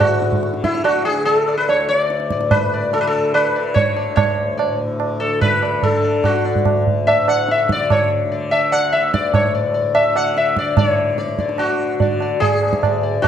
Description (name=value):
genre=indian classical, Hindustani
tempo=145 BPM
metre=4/4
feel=straight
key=D raga yaman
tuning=A4 = 440 Hz
part: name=sitar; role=melody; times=0.0-13.3 s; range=E4 to F#5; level=-17 LUFS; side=left 3 dB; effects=none
part: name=tanpura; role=drone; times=0.0-13.3 s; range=D2 to D3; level=-26 LUFS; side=left 2 dB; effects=none
part: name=tabla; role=percussion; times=0.0-13.3 s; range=none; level=-19 LUFS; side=right 5 dB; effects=none
room=moderate recital hall reverb, RT60 1.8 s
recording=dark, warm production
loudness=-15 LUFS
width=side -9 dB against mid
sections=0.0-10.8 A section; 10.8-13.3 B section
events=none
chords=none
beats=0.01 0.43 | 0.84 1.26 1.68 2.09 | 2.51 2.93 3.34 3.76 | 4.17 4.59 5.00 5.42 | 5.83 6.24 6.66 7.07 | 7.48 7.90 8.31 8.72 | 9.13 9.54 9.95 10.36 | 10.77 11.18 11.59 12.00 | 12.41 12.82 13.23